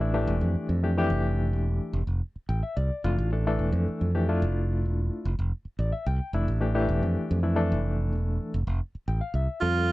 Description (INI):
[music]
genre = electric jazz fusion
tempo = 73 BPM (dotted quarters)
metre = 6/8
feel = straight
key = F major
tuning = A4 = 440 Hz
[part]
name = barky reed electric piano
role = accompaniment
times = 0.0-9.9 s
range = E3 to G5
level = -29 LUFS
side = left 2 dB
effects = fast tremolo
[part]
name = modern bright fingered electric bass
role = bass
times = 0.0-9.9 s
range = E1 to F2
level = -26 LUFS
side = equal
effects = none
[part]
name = clear alto saxophone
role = melody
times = 9.6-9.9 s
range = F4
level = -24 LUFS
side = right 4 dB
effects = none
[sound]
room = little or no reverb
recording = dark, warm production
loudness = -25 LUFS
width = side -18 dB against mid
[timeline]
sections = 0.0-9.6 A section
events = reed electric piano fill 2.2-3.0, 5.5-6.3, 8.8-9.6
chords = 0.0 Fmaj9